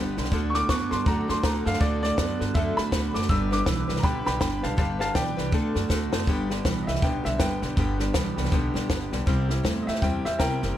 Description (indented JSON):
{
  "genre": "rockabilly",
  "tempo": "161 BPM",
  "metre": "4/4",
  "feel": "swing 61% on 8ths",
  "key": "G major",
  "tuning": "A4 = 441 Hz",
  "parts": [
    { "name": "clear upright piano", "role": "melody", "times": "0.0-10.8 s", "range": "G4 to E6", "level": "-29 LUFS", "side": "equal", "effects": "slapback echo, plate reverb" },
    { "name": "picked steel-string acoustic guitar", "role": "accompaniment", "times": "0.0-10.8 s", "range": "G2 to B4", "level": "-31 LUFS", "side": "left 6 dB", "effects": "plate reverb" },
    { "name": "electric guitar through a small old amp", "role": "riff", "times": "0.0-10.8 s", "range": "G2 to B3", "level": "-30 LUFS", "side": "right 5 dB", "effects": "none" },
    { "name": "upright bass", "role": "bass", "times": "0.0-10.7 s", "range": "F#1 to G2", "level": "-30 LUFS", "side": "equal", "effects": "none" },
    { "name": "compact cocktail drum kit", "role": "drums", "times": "0.2-10.7 s", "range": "hi-hat, kick drum, snare drum", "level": "-27 LUFS", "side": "equal", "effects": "none" }
  ],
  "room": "light reverb",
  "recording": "none",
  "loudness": "-23 LUFS",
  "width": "side -12 dB against mid",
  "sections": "0.0-6.3 A section; 6.3-10.8 B section",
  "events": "upright piano solo 0.0-6.3; drum fill 5.9-6.3",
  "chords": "0.3 D; 3.3 G; 5.5 D; 6.3 G; 9.3 C"
}